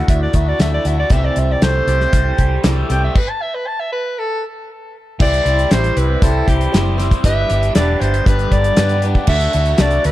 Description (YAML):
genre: folk rock and heartland rock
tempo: 118 BPM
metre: 4/4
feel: straight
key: unclear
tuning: A4 = 440 Hz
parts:
  - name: picked swing-style acoustic guitar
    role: accompaniment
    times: 0.0-10.1 s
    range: C3 to C5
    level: -26 LUFS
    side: left 5 dB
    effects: none
  - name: raw garage guitar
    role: riff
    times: 0.0-10.1 s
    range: G2 to G4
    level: -24 LUFS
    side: right 1 dB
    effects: overdrive, phaser
  - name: mellow soprano saxophone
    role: melody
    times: 0.1-10.1 s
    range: G4 to A5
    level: -20 LUFS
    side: equal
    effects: tape echo
  - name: bright reed electric piano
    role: accompaniment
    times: 0.1-10.1 s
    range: D4 to E5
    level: -29 LUFS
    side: right 3 dB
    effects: medium tremolo
  - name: vintage muted fingered electric bass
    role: bass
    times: 0.1-10.1 s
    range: E1 to G2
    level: -17 LUFS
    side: equal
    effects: none
  - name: damped 70s drum kit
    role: drums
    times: 0.1-10.1 s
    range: crash cymbal, hi-hat, kick drum, snare drum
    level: -17 LUFS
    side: equal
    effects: none
room: light reverb, studio reverb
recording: dark, warm production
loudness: -13 LUFS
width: side -15 dB against mid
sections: 0.0-5.2 A section; 5.2-10.1 B section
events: soprano saxophone solo 0.0-5.2; stop 3.2-5.2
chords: 0.0 Dadd9; 1.1 C6; 3.2 N.C.; 5.2 C; 7.2 G; 9.3 D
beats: 0.09 0.60 | 1.11 1.62 2.14 2.65 | 3.16 3.67 4.18 4.69 | 5.20 5.71 6.23 6.74 | 7.25 7.76 8.27 8.78 | 9.29 9.80